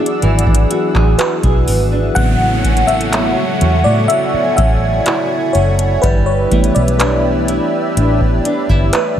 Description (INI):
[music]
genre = contemporary R&B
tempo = 62 BPM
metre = 4/4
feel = straight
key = A major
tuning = A4 = 440 Hz
[part]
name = FM electric piano with soft pad layer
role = accompaniment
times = 0.0-9.2 s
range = C#3 to F#5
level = -16 LUFS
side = left 1 dB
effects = chorus
[part]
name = lush unison pad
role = sustained chords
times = 0.0-9.2 s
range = D4 to E6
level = -21 LUFS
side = equal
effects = chorus, sidechain pumping
[part]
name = flamenco guitar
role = arpeggios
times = 0.0-9.2 s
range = A2 to B4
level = -21 LUFS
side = right 1 dB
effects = tape echo
[part]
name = booming analog drum machine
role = drums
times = 0.1-9.2 s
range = handclaps, hi-hat, kick drum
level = -16 LUFS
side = equal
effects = none
[part]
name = vintage muted fingered electric bass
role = bass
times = 0.2-9.2 s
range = F#1 to A2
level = -16 LUFS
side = equal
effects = none
[part]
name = downlifter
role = sound effects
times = 2.2-9.2 s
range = none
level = -26 LUFS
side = equal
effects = none
[sound]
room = little or no reverb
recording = none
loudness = -11 LUFS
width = side -10 dB against mid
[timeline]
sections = 0.0-2.2 A section; 2.2-9.2 B section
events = FM electric piano solo 2.2-9.2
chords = 0.0 E9; 2.2 A6; 6.0 G6